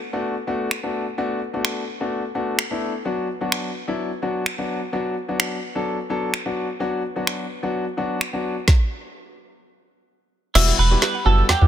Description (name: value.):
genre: dance-pop.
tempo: 128 BPM.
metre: 4/4.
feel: straight.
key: B minor.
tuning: A4 = 440 Hz.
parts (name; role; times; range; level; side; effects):
warm concert grand piano; accompaniment; 0.1-11.7 s; F#3 to A4; -25 LUFS; left 2 dB; none.
deep house drum kit; drums; 0.7-11.6 s; crash cymbal, finger snaps, kick drum, snare drum; -22 LUFS; equal; soft clipping on snare.
twelve-string electric guitar; melody; 10.6-11.7 s; E4 to B4; -21 LUFS; right 4 dB; lush chorus.
mallet-like synth pluck; arpeggios; 10.6-11.7 s; F#4 to F#5; -30 LUFS; right 9 dB; chorus, sidechain pumping.
saturated sub bass; bass; 10.6-11.7 s; E1 to E2; -16 LUFS; right 1 dB; sidechain pumping.
room: light reverb.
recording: dense, heavily limited modern master.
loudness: -21 LUFS.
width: side -11 dB against mid.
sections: 0.0-10.6 A section; 10.6-11.7 B section.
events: build-up 10.6-11.7; drum fill 10.6-11.7.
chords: 0.0 D6; 3.1 Bm; 10.6 Emadd9.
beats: 0.24 0.71 | 1.18 1.65 2.12 2.58 | 3.05 3.52 3.99 4.46 | 4.93 5.40 5.87 6.33 | 6.80 7.27 7.74 8.21 | 8.68 9.15 9.62 10.08 | 10.55 11.02 11.49.